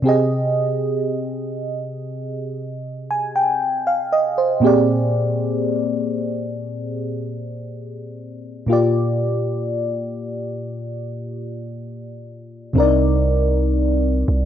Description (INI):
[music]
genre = contemporary R&B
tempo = 59 BPM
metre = 4/4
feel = straight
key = unclear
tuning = A4 = 440 Hz
[part]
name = mellow FM electric piano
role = accompaniment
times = 0.0-14.5 s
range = Bb2 to Ab5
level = -19 LUFS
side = equal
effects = chorus, phaser
[part]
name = long sustained 808-style bass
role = bass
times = 12.8-14.5 s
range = C2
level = -18 LUFS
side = right 1 dB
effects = none
[sound]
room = light reverb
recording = dry, gritty hardware recording, nothing above 7.8 kHz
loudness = -18 LUFS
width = side -9 dB against mid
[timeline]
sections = 0.0-14.5 A section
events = none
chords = 0.0 Fm9/C; 4.6 Bb13; 8.7 Gm7/Bb; 12.8 Cm7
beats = | 0.55 1.57 2.58 3.60 | 4.62 5.64 6.65 7.67 | 8.69 9.70 10.72 11.74 | 12.76 13.77